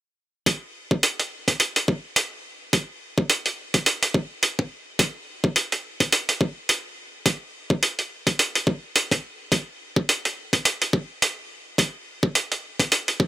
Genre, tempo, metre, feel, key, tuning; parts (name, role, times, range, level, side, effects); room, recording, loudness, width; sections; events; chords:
glitch hop; 106 BPM; 4/4; swing 58% on 16ths
electronic hi-hat; drums; 0.5-13.2 s; -21 LUFS; right 1 dB
electronic kick drum; drums; 0.5-13.3 s; -21 LUFS; left 1 dB; high-pass filter on kick
digital ambience; -21 LUFS; side -16 dB against mid
0.5-13.3 A section